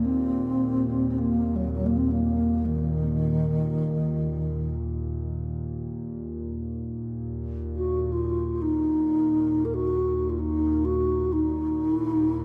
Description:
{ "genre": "world meditative, free-time meditation music", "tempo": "free time", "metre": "none", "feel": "none", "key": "Eb kumoi", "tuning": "A4 = 439 Hz", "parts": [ { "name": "mellow hollow bass flute", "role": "melody", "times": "0.0-12.4 s", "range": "Eb3 to Bb4", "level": "-27 LUFS", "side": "equal", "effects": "none" }, { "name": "warbly tape-like pad", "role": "drone", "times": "0.0-12.4 s", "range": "Eb2 to Bb2", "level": "-32 LUFS", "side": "equal", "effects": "chorus, built-in reverb" } ], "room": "wet cathedral reverb, RT60 5.0 s", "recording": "none", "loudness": "-26 LUFS", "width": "mono", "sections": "0.0-6.5 A section; 6.5-12.4 A section", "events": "none", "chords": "none", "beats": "free time" }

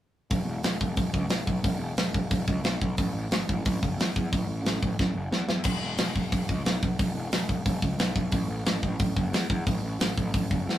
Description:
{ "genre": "punk rock", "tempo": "179 BPM", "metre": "4/4", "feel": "straight", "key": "unclear", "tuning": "A4 = 441 Hz", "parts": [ { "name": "fuzz picked electric bass", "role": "bass", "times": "0.3-10.8 s", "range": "E1 to E2", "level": "-32 LUFS", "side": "equal", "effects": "overdrive" }, { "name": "tight metal drum kit", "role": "drums", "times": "0.3-10.8 s", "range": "crash cymbal, hi-hat, kick drum, snare drum", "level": "-26 LUFS", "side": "equal", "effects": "none" } ], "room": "light reverb", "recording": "rough rehearsal-room recording, warm saturation", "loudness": "-25 LUFS", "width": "side -13 dB against mid", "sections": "0.3-10.8 A section", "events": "drum fill 5.0-5.7", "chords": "none", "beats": "| 0.30 0.63 0.97 1.30 | 1.64 1.97 2.31 2.64 | 2.98 3.31 3.65 3.98 | 4.31 4.65 4.98 5.32 | 5.65 5.99 6.32 6.65 | 6.99 7.32 7.66 7.99 | 8.33 8.66 9.00 9.33 | 9.67 10.00 10.34 10.67" }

